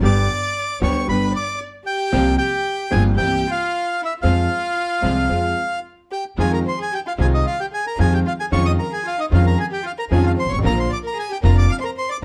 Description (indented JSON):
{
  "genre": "tango",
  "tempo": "114 BPM",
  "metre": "4/4",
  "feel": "rubato",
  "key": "F minor",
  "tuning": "A4 = 440 Hz",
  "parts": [
    { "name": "warm violin", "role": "second line", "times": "0.0-12.2 s", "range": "Eb4 to F5", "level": "-31 LUFS", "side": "equal", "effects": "none" },
    { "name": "warm concert grand piano", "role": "accompaniment", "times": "0.0-11.7 s", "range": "F1 to Ab4", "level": "-24 LUFS", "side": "equal", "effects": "none" },
    { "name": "warm studio string section", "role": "stabs", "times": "0.0-12.2 s", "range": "G3 to F4", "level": "-32 LUFS", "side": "equal", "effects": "none" },
    { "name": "upright bass", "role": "bass", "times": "0.0-11.7 s", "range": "F1 to F2", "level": "-21 LUFS", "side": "equal", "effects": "none" },
    { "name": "bandoneon", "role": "melody", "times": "0.1-12.2 s", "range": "Eb5 to F6", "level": "-26 LUFS", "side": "equal", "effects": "none" }
  ],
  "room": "moderate studio reverb, RT60 0.7 s",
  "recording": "none",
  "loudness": "-20 LUFS",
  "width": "mono",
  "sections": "0.0-6.4 A section; 6.4-12.2 B section",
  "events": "none",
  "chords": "0.0 G; 2.1 C7sus4; 3.2 C7; 4.2 Fm; 6.4 Fm7; 8.5 Dbadd9/F; 10.6 Bb"
}